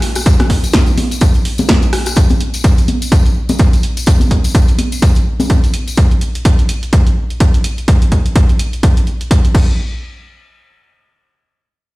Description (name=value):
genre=house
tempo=126 BPM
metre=4/4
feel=swing 58% on 16ths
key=none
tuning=none
part: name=punchy analog drum machine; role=drums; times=0.0-9.7 s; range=crash cymbal, hi-hat, rim click, snare drum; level=-21 LUFS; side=equal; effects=overdrive
part: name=tambourine and congas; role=percussion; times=0.2-6.0 s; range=none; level=-20 LUFS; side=left 2 dB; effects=none
part: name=electronic kick drum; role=drums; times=0.3-9.7 s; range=none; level=-11 LUFS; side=equal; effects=overdrive
room=little or no reverb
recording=played on a big sound system in a bare room, stone room reverb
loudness=-10 LUFS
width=side -20 dB against mid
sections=0.0-9.8 A section; 9.8-12.0 B section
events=none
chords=none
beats=| 0.26 0.74 1.21 1.69 | 2.17 2.64 3.12 3.59 | 4.07 4.55 5.02 5.50 | 5.97 6.45 6.93 7.40 | 7.88 8.36 8.83 9.31